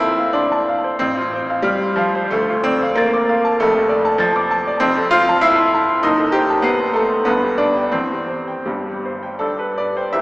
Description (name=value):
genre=classical, romantic character piece for solo piano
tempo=78-100 BPM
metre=2/4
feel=rubato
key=C major from 4.8 s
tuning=A4 = 440 Hz
part: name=bright baby grand piano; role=solo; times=0.0-10.2 s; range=C1 to C7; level=-15 LUFS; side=equal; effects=none
room=wet concert hall reverb, RT60 2.4 s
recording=recorded in a church or concert hall, small speaker sound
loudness=-15 LUFS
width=side -21 dB against mid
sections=0.0-10.1 A section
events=none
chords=0.0 F; 1.0 F/A; 2.3 Dm; 3.6 Dm/F; 4.8 Fmaj7; 6.0 F#dim; 7.3 G; 7.9 C/E; 8.7 C5/G; 9.4 G